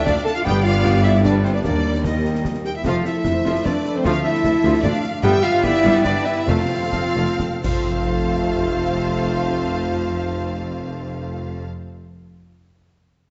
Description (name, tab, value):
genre	cinematic, heroic adventure film score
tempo	120-153 BPM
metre	3/4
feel	straight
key	F lydian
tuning	A4 = 440 Hz
part	warm symphonic violin section	melody	0.0-11.6 s	C5 to A5	-32 LUFS	equal	none
part	bright concert flute	second line	0.0-11.6 s	C5 to A5	-32 LUFS	equal	none
part	warm symphonic violin section	second line	0.0-11.6 s	A4 to A5	-34 LUFS	equal	none
part	clear symphonic viola section	accompaniment	0.0-11.6 s	C3 to C5	-31 LUFS	equal	none
part	mellow French horn section	sustained chords	0.0-11.6 s	C4 to A4	-24 LUFS	equal	none
part	concert harp	arpeggios	0.0-12.1 s	F2 to Bb5	-33 LUFS	equal	none
part	dark tuba	bass	0.1-11.6 s	F1 to Eb2	-29 LUFS	equal	none
part	rich symphonic cello section	bass	0.1-11.6 s	D2 to G2	-30 LUFS	equal	none
part	rich symphonic double bass section	bass	0.1-11.6 s	F1 to Eb2	-29 LUFS	equal	none
part	concert snare drum, concert bass drum and clash cymbals	drums	0.1-7.9 s	none	-32 LUFS	equal	none
part	clear trombone section	sustained chords	0.5-11.6 s	C3 to B3	-34 LUFS	equal	none
room	wet scoring stage reverb, RT60 1.6 s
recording	nothing above 7.8 kHz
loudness	-20 LUFS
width	mono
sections	0.0-7.9 A section; 7.9-10.9 B section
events	slowing down 4.6-7.9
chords	0.5 G; 1.6 Eb; 2.9 F; 4.0 Dm; 5.2 G; 6.5 F